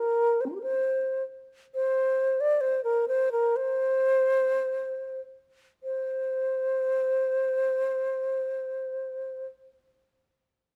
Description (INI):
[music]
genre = chinese traditional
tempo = 46-71 BPM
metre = 2/4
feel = rubato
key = unclear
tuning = A4 = 441 Hz
[part]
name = breathy bright low xiao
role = solo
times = 0.0-9.5 s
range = C4 to D5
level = -27 LUFS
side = equal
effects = none
[sound]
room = light reverb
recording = close, detailed microphones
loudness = -27 LUFS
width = mono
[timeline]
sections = 0.0-5.8 A section; 5.8-10.8 B section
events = slowing down 1.7-5.8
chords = none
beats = 0.84 | 1.71 2.60 | 3.55 4.61 | 5.83 7.11 | 8.37